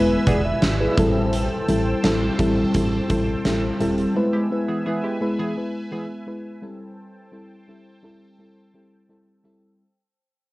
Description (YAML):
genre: 1980s-style pop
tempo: 85 BPM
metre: 4/4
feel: straight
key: A minor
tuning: A4 = 444 Hz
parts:
  - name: mellow FM electric piano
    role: accompaniment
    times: 0.0-9.8 s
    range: G3 to E5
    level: -22 LUFS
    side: left 1 dB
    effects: chorus, cassette tape
  - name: sweeping resonant pad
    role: sustained chords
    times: 0.0-9.8 s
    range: B4 to E6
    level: -31 LUFS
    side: right 1 dB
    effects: chorus, cassette tape
  - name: solid FM bass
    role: bass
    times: 0.0-4.1 s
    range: D#1 to A1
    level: -25 LUFS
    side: equal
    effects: none
  - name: funky polysynth comp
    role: stabs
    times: 0.3-6.1 s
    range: E3 to G#4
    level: -29 LUFS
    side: right 2 dB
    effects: chorus, cassette tape
  - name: huge arena drum kit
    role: drums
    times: 0.3-4.1 s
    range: hi-hat, kick drum, snare drum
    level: -25 LUFS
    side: equal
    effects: cassette tape
room: wet booth ambience, RT60 0.2 s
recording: home recording on cassette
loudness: -19 LUFS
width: side -19 dB against mid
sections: 0.0-9.8 A section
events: fade-out 0.0-9.8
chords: 0.0 E; 1.0 Am7; 4.2 E; 6.6 Am7